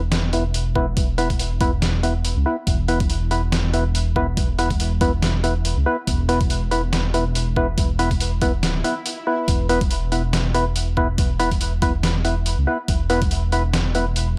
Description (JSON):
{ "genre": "deep dubstep", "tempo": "141 BPM", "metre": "4/4", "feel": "swing 57% on 16ths, half-time", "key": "unclear", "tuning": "A4 = 440 Hz", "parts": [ { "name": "dark detuned saw bass", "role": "bass", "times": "0.0-14.4 s", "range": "D1 to C#2", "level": "-24 LUFS", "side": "equal", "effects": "tube saturation" }, { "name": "trip hop sampler-style drum kit", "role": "drums", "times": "0.1-14.3 s", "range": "hi-hat, snare drum", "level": "-28 LUFS", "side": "equal", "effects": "none" }, { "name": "percussive organ stab", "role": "stabs", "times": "0.3-14.1 s", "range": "B3 to B4", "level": "-26 LUFS", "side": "equal", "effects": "subtle chorus, dub echo" }, { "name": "electronic kick drum", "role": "drums", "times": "0.8-13.3 s", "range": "none", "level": "-24 LUFS", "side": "equal", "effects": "overdrive" }, { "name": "swell", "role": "sound effects", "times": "8.8-9.5 s", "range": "none", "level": "-35 LUFS", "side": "equal", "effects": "none" } ], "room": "little or no reverb", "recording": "dry, gritty hardware recording", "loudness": "-21 LUFS", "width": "mono", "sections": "0.0-14.4 A section", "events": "swell 8.8-9.5", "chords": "0.0 E5" }